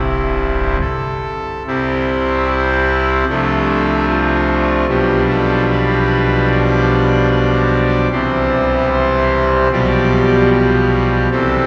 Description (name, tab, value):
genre	classical, chorale-style piece for pipe organ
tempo	74 BPM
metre	4/4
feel	rubato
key	C major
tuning	A4 = 442 Hz
part	pipe organ, trumpet	solo	0.0-11.7 s	C1 to D5	-15 LUFS	equal	none
room	wet cathedral reverb, RT60 5.3 s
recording	heard from further back in the room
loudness	-15 LUFS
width	mono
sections	0.0-1.7 A section; 1.7-11.7 B section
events	none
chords	0.0 C; 3.3 Dm7/C; 4.9 G7/B; 8.1 C; 9.7 G7/B